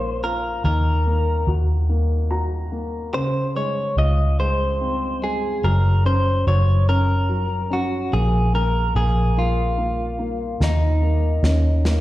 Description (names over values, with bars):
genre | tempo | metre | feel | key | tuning
six-eight pop ballad | 48 BPM (dotted quarters) | 6/8 | straight | unclear | A4 = 440 Hz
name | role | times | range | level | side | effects
direct-recorded clean electric guitar | melody | 0.0-12.0 s | Eb4 to Eb5 | -24 LUFS | equal | wide subtle chorus, slapback echo
dark upright piano | accompaniment | 0.0-12.0 s | Db3 to Bb5 | -27 LUFS | left 2 dB | slapback echo
vintage muted fingered electric bass | bass | 0.0-12.0 s | Gb1 to Eb2 | -19 LUFS | equal | none
snare drum | drums | 10.6-12.0 s | none | -28 LUFS | equal | none
room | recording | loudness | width
light reverb | live gig heard through the venue's PA, recital hall reverb | -18 LUFS | side -16 dB against mid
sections
0.0-12.0 A section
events
upright piano fill 1.9-3.1, 11.9; drum fill 10.6-12.0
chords
0.0 Bbm; 0.6 Ebm; 3.1 Dbmaj7; 5.6 Gb; 8.1 Bb5; 10.6 Eb5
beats
| 0.64 1.89 | 3.14 4.40 | 5.65 6.89 | 8.13 9.37 | 10.61 11.85